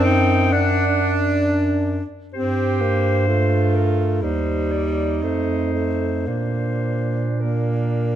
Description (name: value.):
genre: classical, lyrical piece for single-reed quartet.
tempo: 53-67 BPM.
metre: 4/4.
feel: rubato.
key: Bb major.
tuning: A4 = 440 Hz.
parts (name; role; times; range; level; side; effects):
mellow clarinet; melody; 0.0-8.2 s; Bb4 to G5; -26 LUFS; left 4 dB; none.
clear alto saxophone; second line; 0.0-8.2 s; D4 to G4; -25 LUFS; right 9 dB; none.
warm tenor saxophone; accompaniment; 0.0-8.2 s; G3 to D4; -24 LUFS; left 3 dB; none.
dark bass clarinet; bass; 0.0-8.2 s; Eb2 to Bb2; -21 LUFS; right 1 dB; none.
room: light reverb.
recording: close, detailed microphones.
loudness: -18 LUFS.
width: side -11 dB against mid.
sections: 0.0-8.2 A section.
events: none.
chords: 0.0 D7/F#; 2.3 Gm7; 4.2 Cm/Eb; 5.2 F7; 6.3 Bb.